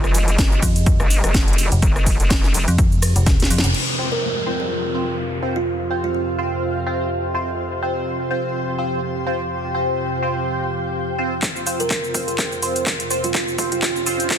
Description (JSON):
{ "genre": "bass house", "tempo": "125 BPM", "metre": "4/4", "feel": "swing 56% on 16ths", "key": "F minor", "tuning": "A4 = 440 Hz", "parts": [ { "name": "sweeping resonant pad", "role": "sustained chords", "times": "0.0-14.4 s", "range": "F2 to G4", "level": "-28 LUFS", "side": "equal", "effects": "chorus, phaser, sidechain pumping" }, { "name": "vowel-sweep wobble bass", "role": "bass", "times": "0.0-2.7 s", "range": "F1 to G1", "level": "-19 LUFS", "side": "equal", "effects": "chorus, overdrive, sidechain pumping" }, { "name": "house drum kit", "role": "drums", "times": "0.0-3.9, 11.4-14.4 s", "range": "crash cymbal, handclaps, hi-hat, ride cymbal, rim click, shaker, snare drum", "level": "-23 LUFS", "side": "equal", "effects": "overdrive" }, { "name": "electronic kick drum", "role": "drums", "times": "0.4-3.4, 11.4-14.4 s", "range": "none", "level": "-19 LUFS", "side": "equal", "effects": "overdrive, high-pass filter on kick, high-pass filter on room" }, { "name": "metallic FM bass", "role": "bass", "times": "0.6-3.7 s", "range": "Eb1 to F2", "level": "-18 LUFS", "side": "equal", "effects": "overdrive, sidechain pumping" }, { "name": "downlifter and riser", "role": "sound effects", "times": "3.7-7.6, 12.3-14.4 s", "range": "none", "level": "-30 LUFS", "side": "left 1 dB", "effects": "none" }, { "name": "granular cloud pad", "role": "texture", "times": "5.6-14.4 s", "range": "F4 to G5", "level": "-28 LUFS", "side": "left 1 dB", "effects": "built-in reverb, sidechain pumping" }, { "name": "band-passed chord stab", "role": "stabs", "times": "4.0-14.4 s", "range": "C4 to C5", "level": "-26 LUFS", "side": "right 1 dB", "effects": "phaser, analog chorus, sidechain pumping, dub echo" }, { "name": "kalimba", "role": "melody", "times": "4.1-6.2, 11.8-13.9 s", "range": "F4 to Bb4", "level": "-27 LUFS", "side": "right 5 dB", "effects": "dub echo" } ], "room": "light reverb, digital ambience", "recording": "dense, heavily limited modern master", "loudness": "-18 LUFS", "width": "side -9 dB against mid", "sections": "0.0-3.7 A section; 3.7-11.4 B section; 11.4-14.4 C section", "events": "drop 0.0-3.7; drum fill 3.3-3.7, 11.4-14.4; band accent 3.6; filter sweep on synth stab 3.7-11.4; build-up 11.4-14.4", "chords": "0.0 F5", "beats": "0.39 0.86 1.34 | 1.82 2.31 2.79 3.27 | 3.75 4.22 4.71 5.18 | 5.67 6.14 6.62 7.11 | 7.58 8.06 8.54 9.03 | 9.51 9.98 10.46 10.95 | 11.43 11.90 12.38 12.87 | 13.35 13.82 14.30" }